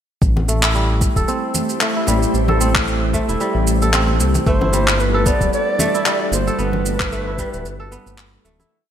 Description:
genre	organic downtempo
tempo	113 BPM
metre	4/4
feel	swing 56% on 16ths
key	A dorian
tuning	A4 = 440 Hz
part	ethereal airy pad	sustained chords	0.8-8.7 s	G3 to C5	-25 LUFS	right 1 dB	ensemble chorus, built-in reverb, sidechain pumping
part	smooth synth bass	bass	0.2-8.6 s	D1 to C2	-20 LUFS	equal	sidechain pumping
part	electronic kick drum	drums	0.2-7.5 s	none	-20 LUFS	equal	overdrive
part	electronic shaker and handclaps	drums	0.2-8.7 s	none	-21 LUFS	equal	overdrive, gated reverb
part	bongos and congas	percussion	0.4-8.7 s	none	-27 LUFS	left 3 dB	none
part	kora	arpeggios	0.5-8.9 s	G3 to A4	-22 LUFS	right 1 dB	low-pass filter, ping-pong delay
part	Native American-style cedar flute	melody	4.5-8.2 s	B4 to D5	-22 LUFS	equal	digital delay
room	moderate lush hall reverb, RT60 2.5 s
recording	bright 1980s-style digital production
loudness	-15 LUFS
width	side -9 dB against mid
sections	0.2-8.7 groove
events	filter sweep on kora 0.2-8.7; fade-out 5.9-8.7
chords	0.2 Am7; 4.5 Gmaj7

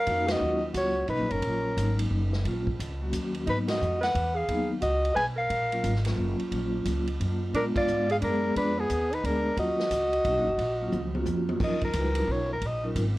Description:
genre	jazz, small-group swing and bop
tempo	177 BPM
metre	3/4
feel	swing 64% on 8ths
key	Eb minor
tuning	A4 = 440 Hz
part	warm soprano saxophone	melody	0.0-12.9 s	Ab4 to Ab5	-28 LUFS	left 1 dB	none
part	mellow alto saxophone	second line	0.0-11.2 s	Cb4 to Cb5	-32 LUFS	right 2 dB	none
part	vibraphone with medium mallets	accompaniment	0.1-12.9 s	Gb3 to Cb5	-31 LUFS	left 1 dB	none
part	upright bass	bass	0.1-13.2 s	Gb1 to Bb2	-31 LUFS	equal	none
part	swinging big-band drum kit	drums	0.1-13.1 s	crash cymbal, hi-hat, kick drum, ride cymbal, snare drum, toms	-36 LUFS	right 1 dB	none
room	light reverb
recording	worn, warbling old tape, cassette tape, warbly pitch drift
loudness	-25 LUFS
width	side -18 dB against mid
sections	0.0-11.6 A section; 11.6-13.2 B section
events	band accent 0.2, 3.6, 7.7; drum fill 10.9-11.6; soprano saxophone solo 11.6-13.2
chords	0.0 Ebm7; 3.5 Abm7; 5.5 Gbmaj9; 7.5 Bb7b9; 9.6 Ebm7

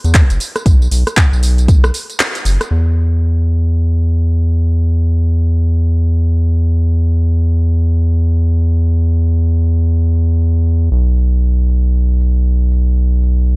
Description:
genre	deep house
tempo	117 BPM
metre	4/4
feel	swing 60% on 16ths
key	unclear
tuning	A4 = 440 Hz
part	round analog bass	bass	0.0-13.6 s	F#1 to E2	-11 LUFS	equal	tube saturation, sidechain pumping
part	deep house drum kit	drums	0.0-13.6 s	handclaps, hi-hat, rim click, tambourine	-18 LUFS	equal	low-pass filter on snare, small room ambience, low-pass filter on hats, low-pass filter on perc
part	electronic kick drum	drums	0.1-1.8 s	none	-9 LUFS	equal	small room ambience
room	digital ambience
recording	dry, gritty hardware recording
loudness	-11 LUFS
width	side -32 dB against mid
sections	0.0-2.7 A section; 2.7-13.6 B section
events	break 2.2-2.7; band accent 2.2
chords	none

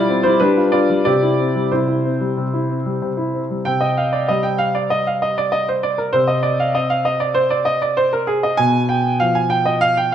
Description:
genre	classical-period piano sonatina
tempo	91-99 BPM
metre	4/4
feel	straight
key	C major, C minor from 3.7 s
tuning	A4 = 439 Hz
part	clear concert grand piano	solo	0.0-10.1 s	B2 to G#5	-15 LUFS	equal	none
room	wet recital hall reverb, RT60 1.4 s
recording	none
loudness	-15 LUFS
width	side -9 dB against mid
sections	0.0-3.7 A section; 3.7-10.1 B section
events	none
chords	0.4 G7; 1.0 C; 3.7 C5; 6.1 N.C.; 8.6 Bdim7(no3)

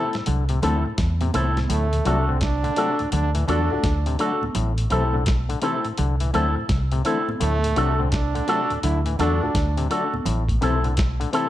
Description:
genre	roots reggae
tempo	84 BPM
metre	4/4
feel	swing 63% on 16ths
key	A dorian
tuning	A4 = 440 Hz
part	electric guitar with an envelope filter	accompaniment	0.0-11.5 s	C4 to A4	-28 LUFS	right 2 dB	tape echo
part	tonewheel organ	accompaniment	0.0-11.5 s	D2 to D4	-32 LUFS	left 2 dB	chorus vibrato
part	auto-wah clav	arpeggios	0.0-11.5 s	A2 to E3	-31 LUFS	left 7 dB	overdrive
part	dark upright piano	stabs	0.0-11.5 s	A3 to A4	-28 LUFS	left 6 dB	none
part	boom bap sampler-style drum kit	drums	0.1-11.5 s	hi-hat, kick drum, snare drum	-26 LUFS	equal	none
part	vintage muted fingered electric bass	bass	0.3-11.2 s	A1 to E2	-22 LUFS	equal	none
part	congas	percussion	0.3-10.8 s	none	-33 LUFS	right 6 dB	none
part	clear trombone	second line	1.7-9.9 s	A3 to E4	-27 LUFS	right 4 dB	tape echo
room	light reverb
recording	none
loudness	-20 LUFS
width	side -13 dB against mid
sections	0.0-11.5 A section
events	none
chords	0.0 Am; 1.7 D; 4.6 Am; 7.4 D; 10.3 Am

